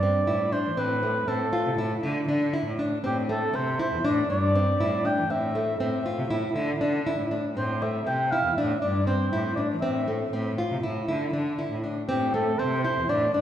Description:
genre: contemporary instrumental, chamber music in an uneven meter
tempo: 239 BPM (eighths)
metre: 9/8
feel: straight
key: A minor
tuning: A4 = 440 Hz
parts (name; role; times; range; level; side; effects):
- mellow oboe; melody; 0.0-13.4 s; G4 to G5; -27 LUFS; equal; none
- nylon-string guitar; arpeggios; 0.0-13.4 s; A3 to F4; -28 LUFS; left 1 dB; none
- clear cello; bass; 0.0-13.4 s; E2 to E3; -29 LUFS; equal; none
room: wet recital hall reverb, RT60 1.6 s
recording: heard from further back in the room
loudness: -24 LUFS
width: side -10 dB against mid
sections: 0.0-13.4 A section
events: none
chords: 0.0 C69; 0.8 F/A; 1.8 Asus4; 3.0 Am; 4.0 C69; 5.3 Fmaj7/A; 6.3 Asus4; 7.6 Am; 8.6 C69; 9.8 Fmaj7/A; 10.8 Asus4; 12.1 Am

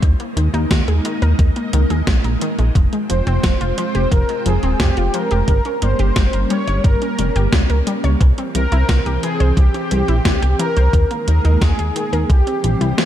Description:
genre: synthwave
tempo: 88 BPM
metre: 4/4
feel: straight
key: F minor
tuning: A4 = 444 Hz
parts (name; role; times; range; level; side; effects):
- string machine, full ensemble; sustained chords; 0.0-13.1 s; Eb3 to G5; -24 LUFS; equal; ensemble chorus, sidechain pumping
- analog pluck; arpeggios; 0.0-13.0 s; Eb3 to Db5; -25 LUFS; left 3 dB; chorus, ping-pong delay
- chorused synth bass; bass; 0.0-12.9 s; Eb1 to Eb2; -16 LUFS; equal; tube saturation
- electronic kick drum; drums; 0.0-12.4 s; none; -16 LUFS; equal; none
- gated 80s digital drum machine; drums; 0.0-13.1 s; hi-hat, snare drum; -24 LUFS; equal; gated reverb, gated reverb snare
- soft supersaw; melody; 3.1-13.1 s; G4 to Db5; -23 LUFS; equal; phaser, cassette tape, ping-pong delay
room: light reverb, digital ambience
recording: dark, warm production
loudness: -14 LUFS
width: side -11 dB against mid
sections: 0.0-13.1 A section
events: none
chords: 0.0 Ebsus4; 2.8 Fmadd9; 5.5 Gdim; 8.2 C; 10.9 Ebsus4; 12.3 C

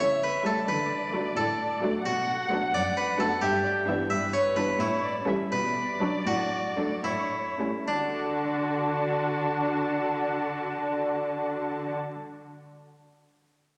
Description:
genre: cinematic, playful, whimsical film cue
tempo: 70-88 BPM (dotted quarters)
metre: 6/8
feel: straight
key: D major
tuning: A4 = 441 Hz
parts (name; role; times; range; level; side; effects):
- harpsichord; melody; 0.0-12.1 s; D4 to E5; -30 LUFS; equal; none
- muted studio violin section; melody; 0.0-11.9 s; B4 to A5; -36 LUFS; equal; none
- muted studio cello section; bass; 0.0-11.9 s; F#2 to D3; -36 LUFS; equal; none
- muted studio viola section; accompaniment; 0.4-11.9 s; E3 to D4; -35 LUFS; equal; none
- muted studio violin section; second line; 0.5-11.9 s; A3 to F#4; -38 LUFS; equal; none
room: wet concert hall reverb, RT60 2.1 s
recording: none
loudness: -28 LUFS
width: mono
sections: 0.0-7.9 A section; 7.9-11.2 B section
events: slowing down 4.1-7.9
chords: 0.0 A7/C#; 0.7 D; 2.1 Bm7; 3.4 Em7/G; 4.8 A7; 5.5 Bm; 6.3 D/A; 7.0 A7; 7.9 D

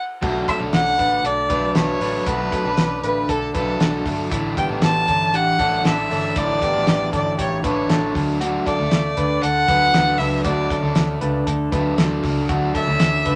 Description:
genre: jangly indie pop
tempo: 117 BPM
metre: 4/4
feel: straight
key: unclear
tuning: A4 = 440 Hz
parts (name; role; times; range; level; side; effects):
- overdriven semi-hollow guitar; accompaniment; 0.2-13.4 s; A2 to A4; -28 LUFS; equal; none
- electric guitar through a small old amp; arpeggios; 0.2-13.4 s; C#3 to B4; -27 LUFS; equal; none
- vintage muted fingered electric bass; bass; 0.2-13.4 s; G1 to D2; -29 LUFS; equal; none
- cloth-damped thuddy drum kit; drums; 0.2-13.4 s; crash cymbal, hi-hat, kick drum, snare drum; -25 LUFS; equal; none
- warm violin; melody; 0.5-13.4 s; A4 to A5; -23 LUFS; equal; none
room: wet studio reverb, RT60 0.6 s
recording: none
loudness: -20 LUFS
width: mono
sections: 0.2-13.4 A section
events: band accent 0.0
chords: 0.2 Bm7; 4.3 Asus4; 8.2 D

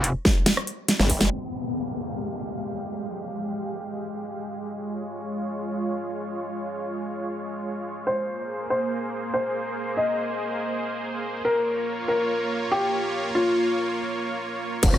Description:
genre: heavy wobble dubstep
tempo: 142 BPM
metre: 4/4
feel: half-time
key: F minor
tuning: A4 = 440 Hz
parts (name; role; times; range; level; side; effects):
- dubstep drum kit; drums; 0.0-1.3, 14.8-15.0 s; crash cymbal, hi-hat, rim click, snare drum; -22 LUFS; equal; none
- electronic kick drum; drums; 0.3-1.2, 14.8-14.9 s; none; -23 LUFS; equal; distortion
- formant-sweep wobble bass; bass; 1.0-1.3, 14.8-15.0 s; F1 to G1; -23 LUFS; equal; chorus, overdrive
- supersaw pad; sustained chords; 1.7-15.0 s; Ab3 to F5; -29 LUFS; right 1 dB; sidechain pumping
- downlifter and impact; sound effects; 1.3-4.7, 14.8-15.0 s; none; -32 LUFS; left 2 dB; none
- felt-muted upright piano; melody; 8.1-14.0 s; F4 to Eb5; -25 LUFS; left 1 dB; dub echo
room: light reverb, digital ambience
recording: low-pass filter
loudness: -24 LUFS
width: side -11 dB against mid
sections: 0.0-1.3 A section; 1.3-14.8 B section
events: drop 0.0-1.3; drum fill 0.9-1.3; band accent 1.2; filter sweep 1.3-14.8; break 14.0-14.8; impact 14.8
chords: 0.0 F5; 1.3 Fmadd9; 4.7 Db; 8.1 Abadd9; 11.4 Bbm

